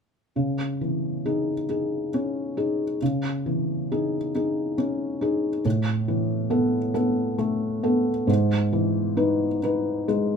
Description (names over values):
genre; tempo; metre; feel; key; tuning
neoclassical minimalist piano; 45 BPM (dotted quarters); 6/8; rubato; C# minor; A4 = 440 Hz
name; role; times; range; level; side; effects
felt-muted upright piano; solo; 0.4-10.4 s; G#2 to B4; -22 LUFS; left 1 dB; none
room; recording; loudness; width
moderate studio reverb, RT60 0.6 s; minimal, uncompressed stereo recording; -22 LUFS; side -6 dB against mid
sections
0.3-10.4 A section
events
none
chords
0.3 C#madd9; 5.7 Asus2; 8.3 Emaj7/G#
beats
| 0.35 1.69 | 3.01 4.34 | 5.65 6.96 | 8.28 9.64